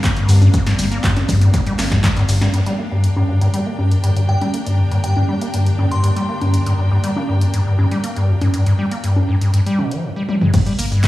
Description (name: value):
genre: acid house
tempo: 120 BPM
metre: 4/4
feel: straight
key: G minor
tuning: A4 = 441 Hz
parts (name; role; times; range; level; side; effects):
- warbly tape-like pad; sustained chords; 0.0-11.1 s; D3 to G4; -29 LUFS; equal; chorus, built-in reverb, sidechain pumping
- acid bass, square; riff; 0.0-11.1 s; F2 to Bb3; -16 LUFS; left 1 dB; overdrive, cassette tape, digital delay
- electronic kick drum; drums; 0.0-2.1, 10.5-11.1 s; none; -17 LUFS; equal; none
- loose indie drum kit; drums; 0.0-2.4, 10.5-11.1 s; hi-hat, snare drum; -36 LUFS; equal; none
- punchy analog drum machine; drums; 0.0-11.1 s; congas, crash cymbal, handclaps, hi-hat, shaker, snare drum, toms; -24 LUFS; equal; none
- bright studio string section; texture; 0.0-10.0 s; D4 to G5; -31 LUFS; equal; sidechain pumping
- round analog bass; bass; 0.3-2.5, 10.8-11.0 s; G1 to G2; -15 LUFS; left 1 dB; sidechain pumping
- glassy synth bell; melody; 4.3-6.6 s; G5 to C6; -28 LUFS; equal; chorus, tape echo
room: light reverb, digital ambience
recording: played on a big sound system in a bare room, large studio reverb, studio reverb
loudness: -14 LUFS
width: side -16 dB against mid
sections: 0.0-2.5 A section; 2.5-10.5 B section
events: drop 0.0-2.5; drum fill 2.0-2.5, 10.3; band accent 2.4; filter sweep on acid bass 2.5-10.5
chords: 0.0 Gm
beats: 0.04 | 0.54 1.04 1.54 2.04 | 2.54 3.04 3.54 4.04 | 4.54 5.04 5.54 6.04 | 6.54 7.04 7.54 8.04 | 8.54 9.04 9.54 10.04 | 10.54 11.04